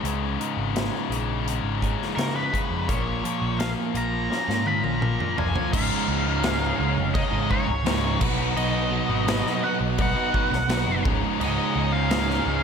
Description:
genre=quiet-loud alternative rock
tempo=84 BPM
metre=4/4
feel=straight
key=Db mixolydian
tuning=A4 = 440 Hz
part: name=twelve-string electric guitar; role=arpeggios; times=0.0-5.7 s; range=Db2 to Bb4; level=-33 LUFS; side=right 8 dB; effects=tape echo
part: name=scooped high-gain guitar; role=riff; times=0.0-12.6 s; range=Db2 to Cb5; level=-28 LUFS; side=left 11 dB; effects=distortion, slapback echo
part: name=overdriven picked electric bass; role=bass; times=0.0-12.6 s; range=Db1 to Db3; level=-28 LUFS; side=equal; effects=none
part: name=big rock drum kit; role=drums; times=0.1-12.4 s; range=crash cymbal, hi-hat, kick drum, snare drum, toms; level=-28 LUFS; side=equal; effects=none
part: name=octave-fuzz lead guitar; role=melody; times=2.2-12.6 s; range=Bb4 to Cb6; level=-29 LUFS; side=equal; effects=distortion, slapback echo, tape echo
part: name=dark studio string section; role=sustained chords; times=5.7-12.6 s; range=Cb5 to Eb6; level=-37 LUFS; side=right 1 dB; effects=none
part: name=thick fuzz guitar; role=riff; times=5.7-12.6 s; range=Db2 to Cb5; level=-28 LUFS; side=right 12 dB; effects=distortion
room=light reverb, small room ambience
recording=none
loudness=-22 LUFS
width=side -6 dB against mid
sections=0.0-5.7 A section; 5.7-12.6 B section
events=drum fill 4.3-5.7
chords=0.0 Dbsus2; 2.9 Bbm; 5.7 Dbadd9; 8.2 Cb; 11.1 Dbadd9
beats=| 0.04 0.76 1.47 2.18 | 2.89 3.60 4.31 5.03 | 5.74 6.45 7.16 7.87 | 8.58 9.29 9.99 10.70 | 11.41 12.12

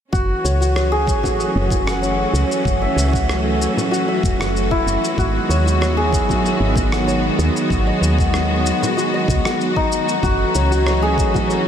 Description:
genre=organic downtempo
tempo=95 BPM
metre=4/4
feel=straight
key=F# dorian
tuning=A4 = 440 Hz
part: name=rich studio string section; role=sustained chords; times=0.1-11.7 s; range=D#3 to F#4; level=-21 LUFS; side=right 1 dB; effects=sidechain pumping
part: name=santur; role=arpeggios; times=0.1-11.7 s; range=D#4 to F#5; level=-20 LUFS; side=left 1 dB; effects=ping-pong delay
part: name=woody FM bass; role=bass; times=0.1-11.3 s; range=E1 to D#2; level=-20 LUFS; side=equal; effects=sidechain pumping
part: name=electronic kick drum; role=drums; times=0.1-11.5 s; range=none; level=-22 LUFS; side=equal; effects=none
part: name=electronic shaker and rim click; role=drums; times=0.1-11.6 s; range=none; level=-28 LUFS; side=left 1 dB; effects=none
part: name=frame drum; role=percussion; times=1.2-11.5 s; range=none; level=-31 LUFS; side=left 2 dB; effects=none
room=moderate huge ambient reverb, RT60 8.1 s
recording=dreamy mix soaked in reverb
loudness=-15 LUFS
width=side -9 dB against mid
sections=0.1-11.7 A section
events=none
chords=0.1 F#m7; 5.2 G#m7; 10.2 F#m7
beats=| 0.13 0.76 1.39 2.02 | 2.65 3.29 3.92 4.55 | 5.18 5.81 6.44 7.08 | 7.71 8.34 8.97 9.60 | 10.23 10.87 11.50

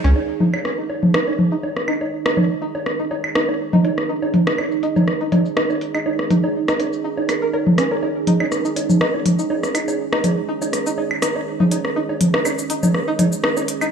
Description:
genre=minimal techno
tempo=122 BPM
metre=4/4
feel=swing 54% on 16ths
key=unclear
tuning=A4 = 438 Hz
part: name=string-like resonator pluck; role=riff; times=0.0-13.8 s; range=Db4 to Bb4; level=-25 LUFS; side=right 2 dB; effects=lush chorus, digital delay
part: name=deep dark ambient pad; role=texture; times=0.0-13.9 s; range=Eb4 to F5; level=-24 LUFS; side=right 5 dB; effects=chorus, built-in reverb
part: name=electronic woodblock, congas and rim click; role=percussion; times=0.2-13.9 s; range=none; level=-19 LUFS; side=equal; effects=none
part: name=electronic hi-hat and shaker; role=drums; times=0.4-13.9 s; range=none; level=-31 LUFS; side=left 2 dB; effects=low-pass filter on perc, low-pass filter on hats, low-pass filter on snare, low-pass filter on room
room=light reverb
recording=small room ambience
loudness=-17 LUFS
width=side -6 dB against mid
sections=0.2-13.9 A section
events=filter sweep on drum 0.2-13.9; filter sweep on synth pluck 0.2-13.9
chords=0.2 Ebsus4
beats=| 0.16 0.65 1.14 1.63 | 2.12 2.62 3.11 3.60 | 4.09 4.58 5.08 5.57 | 6.06 6.55 7.04 7.54 | 8.03 8.52 9.01 9.50 | 9.99 10.48 10.98 11.47 | 11.96 12.45 12.94 13.44

